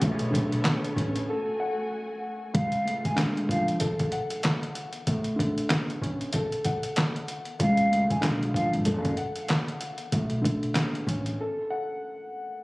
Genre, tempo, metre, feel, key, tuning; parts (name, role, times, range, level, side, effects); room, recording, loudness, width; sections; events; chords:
hip hop, boom-bap hip-hop; 95 BPM; 4/4; swing 60% on 16ths; F# harmonic minor; A4 = 437 Hz
warm concert grand piano; accompaniment; 0.0-12.6 s; C#2 to F#5; -30 LUFS; equal; cassette tape, high-pass filter, low-pass filter
bright studio string section; sustained chords; 0.0-2.5 s; A3 to G#5; -37 LUFS; equal; high-pass filter, low-pass filter
upright bass; bass; 0.0-1.2, 7.6-11.3 s; F#1 to C#2; -28 LUFS; equal
trip hop sampler-style drum kit; drums; 0.0-11.4 s; handclaps, hi-hat, kick drum, snare drum; -28 LUFS; equal
breathy mellow jazz flute; melody; 2.5-3.7, 7.6-8.7 s; E#5 to G#5; -29 LUFS; equal; high-pass filter, low-pass filter, tape echo
light reverb, studio ambience; recorded on a phone in the room, club reverb; -25 LUFS; side -23 dB against mid
0.0-2.5 A section; 2.5-12.6 B section
break 1.3-2.5, 11.4-12.6
0.0 Bm9; 1.3 F#madd9; 2.5 C#; 3.8 F#m; 5.1 Bm9; 6.3 F#m; 7.6 C#7b9b13; 8.9 F#m; 10.1 Bm9; 11.4 F#m